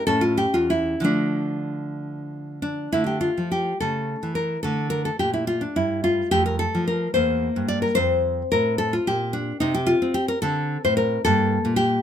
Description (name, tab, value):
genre	classical, baroque-style dance for nylon-string guitar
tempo	61-76 BPM (dotted quarters)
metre	6/8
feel	rubato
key	D minor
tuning	A4 = 440 Hz
part	nylon-string guitar	solo	0.0-12.0 s	E2 to D5	-21 LUFS	equal	none
room	light reverb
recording	minimal, uncompressed stereo recording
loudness	-20 LUFS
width	side -9 dB against mid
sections	0.0-2.9 A section; 2.9-12.0 B section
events	none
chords	0.1 A; 1.0 Dm; 3.8 A/C#; 4.6 D5; 6.3 F; 7.1 C7/E; 8.0 F; 9.6 N.C.; 10.4 D5; 11.3 Gm